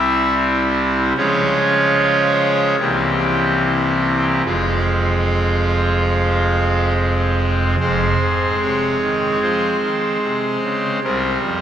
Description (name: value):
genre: classical, chorale-style piece for pipe organ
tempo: 74 BPM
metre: 4/4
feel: straight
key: F minor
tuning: A4 = 440 Hz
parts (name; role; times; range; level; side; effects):
- pipe organ, trumpet; solo; 0.0-11.6 s; F1 to E5; -15 LUFS; right 1 dB; none
room: wet church reverb, RT60 3.7 s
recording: recorded in a church or concert hall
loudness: -15 LUFS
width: side -9 dB against mid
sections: 0.0-7.8 A section; 7.8-11.6 B section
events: none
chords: 0.0 C; 1.2 Db; 2.8 C7; 4.5 Fm; 11.0 C7(no3)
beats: 0.36 | 1.17 1.98 2.80 3.62 | 4.46 5.30 6.14 6.97 | 7.80 8.61 9.42 10.23 | 11.03